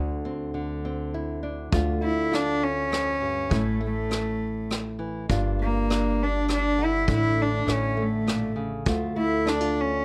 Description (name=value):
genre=acoustic folk-pop ballad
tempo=101 BPM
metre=3/4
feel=straight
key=D harmonic minor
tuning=A4 = 439 Hz
part: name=nylon-string guitar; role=accompaniment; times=0.0-10.0 s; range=D2 to F4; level=-31 LUFS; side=equal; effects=none
part: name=upright bass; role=bass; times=0.0-10.0 s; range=G1 to D2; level=-33 LUFS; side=equal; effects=none
part: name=vintage brush drum kit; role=drums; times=1.7-9.6 s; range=hi-hat, kick drum, rim click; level=-31 LUFS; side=equal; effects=none
part: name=warm cello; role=melody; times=2.0-10.0 s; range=A3 to E4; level=-28 LUFS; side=equal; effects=none
room=little or no reverb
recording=close, detailed microphones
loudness=-26 LUFS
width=mono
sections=0.0-1.7 A section; 1.7-10.0 B section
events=none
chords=0.0 Cadd9/D; 1.7 Dm; 3.5 A; 5.3 Gm7; 7.1 Asus4; 7.7 A; 8.9 Dm